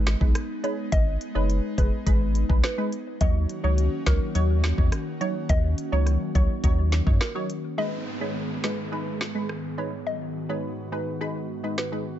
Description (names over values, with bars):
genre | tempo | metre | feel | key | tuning
dancehall | 105 BPM | 4/4 | straight | unclear | A4 = 445 Hz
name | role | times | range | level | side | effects
punchy chord stab | accompaniment | 0.0-12.0 s | Gb3 to Db5 | -31 LUFS | equal | chorus, phaser, sidechain pumping
airy breathy pad | sustained chords | 0.0-12.2 s | Ab2 to Ab4 | -33 LUFS | left 1 dB | chorus, sidechain pumping
warm sub bass | bass | 0.0-7.2 s | Gb1 to Gb2 | -23 LUFS | equal | none
island pop drum kit | drums | 0.1-11.9 s | hi-hat, kick drum, rim click, snare drum | -24 LUFS | equal | none
hollow square pluck | melody | 0.6-12.2 s | Bb4 to Eb5 | -33 LUFS | equal | chorus, ping-pong delay
downlifter | sound effects | 7.8-12.2 s | none | -40 LUFS | right 2 dB | none
room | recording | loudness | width
little or no reverb | nothing above 7.7 kHz | -23 LUFS | side -12 dB against mid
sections
0.0-7.8 A section; 7.8-12.2 B section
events
none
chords
0.0 Abm; 3.2 Ebm7; 7.8 Abm